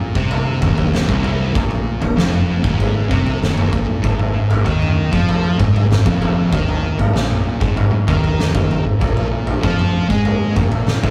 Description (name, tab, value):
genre	stoner and doom metal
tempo	96 BPM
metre	4/4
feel	straight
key	unclear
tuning	A4 = 440 Hz
part	thick fuzz guitar	riff	0.0-11.1 s	C2 to Ab3	-23 LUFS	equal	distortion
part	thick fuzz guitar	riff	0.0-11.1 s	C2 to Ab3	-23 LUFS	equal	distortion
part	plucky analog bass	bass	0.0-11.1 s	C1 to Ab2	-27 LUFS	equal	overdrive
part	oversized low-tuned drum kit	drums	0.2-11.1 s	kick drum, snare drum, toms	-20 LUFS	equal	none
room	light reverb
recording	rough rehearsal-room recording, tube saturation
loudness	-17 LUFS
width	mono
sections	0.0-11.1 A section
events	none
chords	0.0 Eb5; 4.0 Ab5; 9.0 Bb5